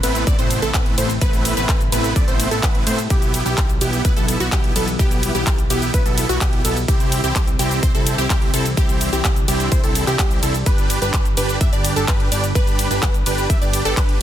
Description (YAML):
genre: EDM, festival progressive house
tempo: 127 BPM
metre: 4/4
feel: straight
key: G major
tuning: A4 = 439 Hz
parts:
  - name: lush unison pad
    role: sustained chords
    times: 0.0-14.2 s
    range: C3 to B4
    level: -28 LUFS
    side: equal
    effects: chorus, phaser, sidechain pumping
  - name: wide unison pluck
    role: arpeggios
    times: 0.0-14.2 s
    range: F#4 to E5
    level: -26 LUFS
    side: right 1 dB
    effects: vintage 12-bit sampler grit, sidechain pumping, dub echo
  - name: supersaw chords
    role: riff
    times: 0.0-14.2 s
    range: A3 to E5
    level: -24 LUFS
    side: right 1 dB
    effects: sidechain pumping, dub echo
  - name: fat analog bass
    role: bass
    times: 0.0-14.2 s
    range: G1 to A2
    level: -24 LUFS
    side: equal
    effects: sidechain pumping
  - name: big-room dance drum kit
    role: drums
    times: 0.0-14.2 s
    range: cabasa, handclaps, hi-hat, ride cymbal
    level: -25 LUFS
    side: equal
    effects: none
  - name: electronic kick drum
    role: drums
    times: 0.3-14.1 s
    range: none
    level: -18 LUFS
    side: equal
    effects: none
room: little or no reverb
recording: dense, heavily limited modern master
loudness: -16 LUFS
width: side -11 dB against mid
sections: 0.0-14.2 A section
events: none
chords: 0.0 Amadd9; 3.1 Em/B; 6.9 C; 10.7 G